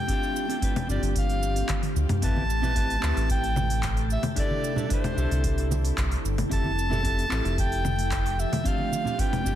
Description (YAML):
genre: sunset chillout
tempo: 112 BPM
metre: 4/4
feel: straight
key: C major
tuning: A4 = 440 Hz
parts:
  - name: clear soprano saxophone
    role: melody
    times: 0.0-9.6 s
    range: C5 to A5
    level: -30 LUFS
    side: left 1 dB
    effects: ping-pong delay, shimmer reverb
  - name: mellow electric guitar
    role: accompaniment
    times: 0.0-9.6 s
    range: C4 to C5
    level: -33 LUFS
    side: moving between left 3 dB and right 4 dB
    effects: auto-pan, shimmer reverb
  - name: ethereal airy pad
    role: sustained chords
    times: 0.0-9.6 s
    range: C3 to A4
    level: -34 LUFS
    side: right 1 dB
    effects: ensemble chorus, built-in reverb, shimmer reverb
  - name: deep house drum kit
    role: drums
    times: 0.1-9.6 s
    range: congas, handclaps, hi-hat, shaker, toms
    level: -31 LUFS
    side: left 1 dB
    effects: none
  - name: electronic kick drum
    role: drums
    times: 0.1-9.3 s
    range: none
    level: -29 LUFS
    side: equal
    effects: none
  - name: round analog bass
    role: bass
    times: 0.9-9.6 s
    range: F1 to D2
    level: -27 LUFS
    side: equal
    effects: tube saturation
  - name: congas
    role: percussion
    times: 2.4-9.2 s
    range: none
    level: -33 LUFS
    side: right 3 dB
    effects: none
room: light reverb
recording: dense, heavily limited modern master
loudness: -23 LUFS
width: side -11 dB against mid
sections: 0.0-9.6 A section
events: drum fill 1.7-2.2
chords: 0.1 G9sus4; 2.2 Am9; 4.4 Cadd9; 6.5 Fmaj9; 8.7 G9sus4